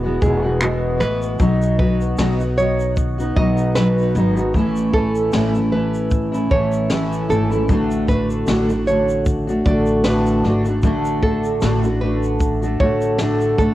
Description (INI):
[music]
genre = acoustic pop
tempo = 76 BPM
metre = 4/4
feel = swing 55% on 16ths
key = unclear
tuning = A4 = 441 Hz
[part]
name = fingerpicked steel-string acoustic guitar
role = accompaniment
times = 0.0-13.7 s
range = E2 to F#4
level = -18 LUFS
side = equal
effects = double-tracked left and right, cassette tape
[part]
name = upright bass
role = bass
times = 0.0-13.7 s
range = E1 to B1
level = -23 LUFS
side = equal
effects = none
[part]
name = nylon-string guitar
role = arpeggios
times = 0.2-13.7 s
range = G#4 to D#5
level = -22 LUFS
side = right 2 dB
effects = cassette tape
[part]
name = jazz brush drum kit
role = drums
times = 0.2-13.7 s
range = finger snaps, kick drum, shaker, snare drum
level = -22 LUFS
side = equal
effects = cassette tape
[sound]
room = light reverb, small room ambience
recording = home recording on cassette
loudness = -16 LUFS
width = side -15 dB against mid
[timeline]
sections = 0.0-1.4 A section; 1.4-13.7 B section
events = none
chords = 0.0 Eadd9; 1.4 B; 4.5 A; 7.7 D